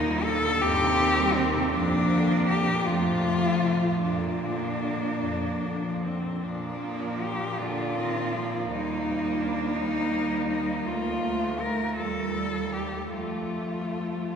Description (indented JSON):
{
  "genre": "classical, lyrical piece for cello ensemble",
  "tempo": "49-56 BPM (dotted quarters)",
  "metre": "6/8",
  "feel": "rubato",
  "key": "Bb major",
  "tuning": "A4 = 440 Hz",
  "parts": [
    { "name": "rich cello", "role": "melody", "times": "0.0-14.4 s", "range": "C4 to Bb4", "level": "-28 LUFS", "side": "left 2 dB", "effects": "none" },
    { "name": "rich cello", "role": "second line", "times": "0.0-14.4 s", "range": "G3 to D4", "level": "-32 LUFS", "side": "right 4 dB", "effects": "none" },
    { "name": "clear cello", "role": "accompaniment", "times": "0.0-14.4 s", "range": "F2 to Bb3", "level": "-34 LUFS", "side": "right 1 dB", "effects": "none" },
    { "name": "rich cello", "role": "bass", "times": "0.0-14.4 s", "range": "D2 to Bb2", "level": "-30 LUFS", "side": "equal", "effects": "none" }
  ],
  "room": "wet cathedral reverb, RT60 5.1 s",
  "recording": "recorded in a church or concert hall",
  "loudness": "-24 LUFS",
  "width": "side -7 dB against mid",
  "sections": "0.0-6.4 A section; 6.4-14.4 B section",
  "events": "none",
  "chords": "0.0 Ebmaj7; 0.6 Cm/Eb; 1.7 Bb/F; 2.9 F; 4.0 Bb/F; 6.4 Bb; 8.7 Eb; 10.9 Bb/D; 12.0 Eb; 13.2 F"
}